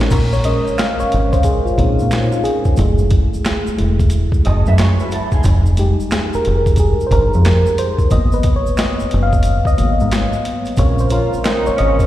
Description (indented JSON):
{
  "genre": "R&B, neo-soul",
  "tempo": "90 BPM",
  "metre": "4/4",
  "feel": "swing 64% on 16ths",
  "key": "Bb minor",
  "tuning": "A4 = 440 Hz",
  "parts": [
    { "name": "mellow FM electric piano", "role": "accompaniment", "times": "0.0-12.1 s", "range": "Bb2 to F5", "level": "-19 LUFS", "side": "left 1 dB", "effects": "chorus, slapback echo" },
    { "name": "tonewheel organ", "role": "sustained chords", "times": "0.0-0.1, 10.8-12.1 s", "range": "Db3 to F4", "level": "-28 LUFS", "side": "right 1 dB", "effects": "chorus vibrato, stopped rotary speaker" },
    { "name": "deep dub fingered electric bass", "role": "bass", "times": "0.0-12.1 s", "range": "Fb1 to Bb2", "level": "-15 LUFS", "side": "equal", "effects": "none" },
    { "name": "boom bap sampler-style drum kit", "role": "drums", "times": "0.0-12.1 s", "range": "crash cymbal, hi-hat, kick drum, snare drum", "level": "-18 LUFS", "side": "equal", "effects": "none" },
    { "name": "tube shaker and finger snaps", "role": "percussion", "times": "0.1-12.1 s", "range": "none", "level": "-35 LUFS", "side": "right 4 dB", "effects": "slapback echo" },
    { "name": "electric guitar through a small old amp", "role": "second line", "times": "4.5-5.7 s", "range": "Eb4 to Fb5", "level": "-24 LUFS", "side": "right 3 dB", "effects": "ensemble chorus, slapback echo" },
    { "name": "mellow horn section", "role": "stabs", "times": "11.1-12.1 s", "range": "Db3 to F4", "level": "-20 LUFS", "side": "right 3 dB", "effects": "slapback echo" }
  ],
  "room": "light reverb",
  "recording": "live gig heard through the venue's PA, recital hall reverb",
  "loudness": "-13 LUFS",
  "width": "side -14 dB against mid",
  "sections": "0.1-12.1 A section",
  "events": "FM electric piano solo 0.1-12.1",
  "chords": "0.1 Bbm9; 2.8 Gbm9; 5.4 Fm9; 8.1 Abm9; 10.8 Bbm9",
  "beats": "| 0.11 0.78 1.45 2.11 | 2.78 3.45 4.11 4.78 | 5.45 6.11 6.78 7.45 | 8.11 8.78 9.45 10.11 | 10.78 11.45"
}